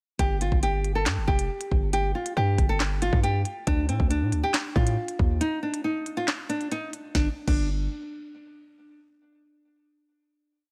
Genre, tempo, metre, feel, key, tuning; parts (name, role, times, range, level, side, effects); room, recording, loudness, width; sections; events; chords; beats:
hip hop, drill; 138 BPM; 4/4; half-time; A4 = 444 Hz
nylon-string guitar; melody; 0.2-7.7 s; C4 to A4; -31 LUFS; equal
hard-hitting 808-style bass; bass; 0.2-7.9 s; F1 to A2; -29 LUFS; equal
drill drum kit; drums; 0.2-7.6 s; crash cymbal, handclaps, hi-hat, kick drum, snare drum; -28 LUFS; equal; vintage 12-bit sampler grit
light reverb, digital ambience; -26 LUFS; mono
0.2-7.1 verse; 7.1-8.9 final chord
break 5.4-7.1
0.2 N.C.; 3.7 Dm; 5.4 N.C.; 7.1 G5
| 0.19 0.63 1.06 1.50 | 1.93 2.37 2.80 3.24 | 3.67 4.11 4.54 4.97 | 5.41 5.84 6.28 6.71 | 7.15 7.58